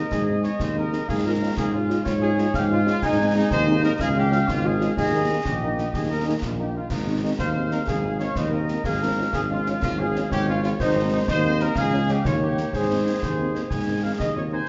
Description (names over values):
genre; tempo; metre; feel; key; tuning
military-style march for wind band; 124 BPM (dotted quarters); 6/8; straight; Ab major; A4 = 436 Hz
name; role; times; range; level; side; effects
clear trumpet section; melody; 0.0-14.7 s; Eb4 to F5; -31 LUFS; equal; none
warm woodwind section; second line; 0.0-14.7 s; Eb4 to Ab5; -31 LUFS; equal; none
mellow tuba; bass; 0.0-14.6 s; Ab1 to Ab2; -26 LUFS; equal; none
concert snare drum, concert bass drum and clash cymbals; drums; 0.1-14.3 s; none; -33 LUFS; equal; none
mellow French horn section; accompaniment; 0.3-14.6 s; Eb3 to F4; -32 LUFS; equal; none
room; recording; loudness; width
wet large studio reverb, RT60 1.4 s; heard from further back in the room, nothing above 7.6 kHz; -23 LUFS; mono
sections
0.0-14.7 A section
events
none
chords
0.0 Ab; 1.1 Db/Ab; 3.0 Ab; 4.0 Db; 5.0 Eb; 6.9 Ab; 8.9 Db/Ab; 10.8 Ab; 11.8 Db; 12.3 Eb; 12.7 Ab